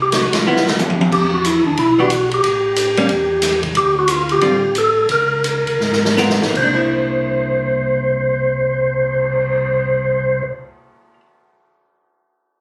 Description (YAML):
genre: soul jazz organ trio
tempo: 154-182 BPM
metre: 4/4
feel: swing 64% on 8ths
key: C mixolydian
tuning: A4 = 440 Hz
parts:
  - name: percussive tonewheel organ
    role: melody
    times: 0.0-10.4 s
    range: D4 to C5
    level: -18 LUFS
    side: equal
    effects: fast rotary speaker
  - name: mellow tonewheel organ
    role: bass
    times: 0.0-10.4 s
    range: G1 to Ab2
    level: -27 LUFS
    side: equal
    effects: slow rotary speaker
  - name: swinging big-band drum kit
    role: drums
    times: 0.1-9.6 s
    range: crash cymbal, cymbal swell, hi-hat, kick drum, ride cymbal, snare drum, toms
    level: -23 LUFS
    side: equal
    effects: none
  - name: archtop guitar, miked and amplified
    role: accompaniment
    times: 0.5-11.3 s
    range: D3 to Bb4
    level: -22 LUFS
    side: equal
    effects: none
room: moderate studio reverb, RT60 0.8 s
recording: recorded on a phone in the room, club reverb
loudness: -17 LUFS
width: mono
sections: 0.0-1.1 A section; 1.1-6.6 B section; 6.6-9.7 C section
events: band accent 0.3; drum fill 0.5-1.1, 5.8-6.6; slowing down 3.7-6.6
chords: 0.5 G6; 1.1 Em; 2.4 A7(no3); 3.7 Dm7; 5.1 Db6; 6.6 C9